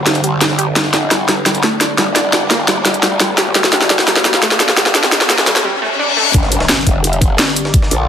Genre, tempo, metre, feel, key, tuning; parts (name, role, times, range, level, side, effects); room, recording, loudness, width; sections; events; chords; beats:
dark technical drum and bass; 172 BPM; 4/4; straight; G minor; A4 = 439 Hz
sweeping resonant pad; sustained chords; 0.0-8.1 s; D3 to F5; -25 LUFS; right 1 dB; chorus, sidechain pumping
growl bass; bass; 0.0-8.1 s; F1 to Bb1; -19 LUFS; equal; chorus, overdrive, sidechain pumping, high-pass filter
riser, reverse cymbal and impact; sound effects; 1.8-7.7 s; -22 LUFS; left 3 dB
wide unison pluck; arpeggios; 0.1-6.3 s; G3 to G4; -20 LUFS; right 2 dB; sidechain pumping, tape echo
drum and bass drum kit; drums; 0.1-8.0 s; hi-hat, snare drum; -13 LUFS; equal; overdrive
breakbeat sampler-style drum kit; drums; 6.3-8.0 s; hi-hat, snare drum; -23 LUFS; left 1 dB; high-pass filter on hats, high-pass filter on snare
electronic kick drum; drums; 6.3-7.8 s; -12 LUFS; equal; overdrive
moderate plate reverb, RT60 1.6 s; dense, heavily limited modern master, high-pass filter; -11 LUFS; side -8 dB against mid
0.0-6.3 A section; 6.3-8.1 B section
build-up 0.0-6.3; drum fill 0.0-5.6; filter sweep on analog synth pad 0.0-6.3; filter sweep on synth arpeggio sound 0.0-6.3; riser 1.8-6.3; break 5.6-6.3; reverse cymbal 5.6-6.3; drop 6.3-8.1; impact 6.3-7.7
0.0 G5
0.06 0.41 | 0.76 1.11 1.46 1.81 | 2.16 2.51 2.85 3.20 | 3.55 3.90 4.25 4.60 | 4.95 5.30 5.64 5.99 | 6.34 6.69 7.04 7.39 | 7.74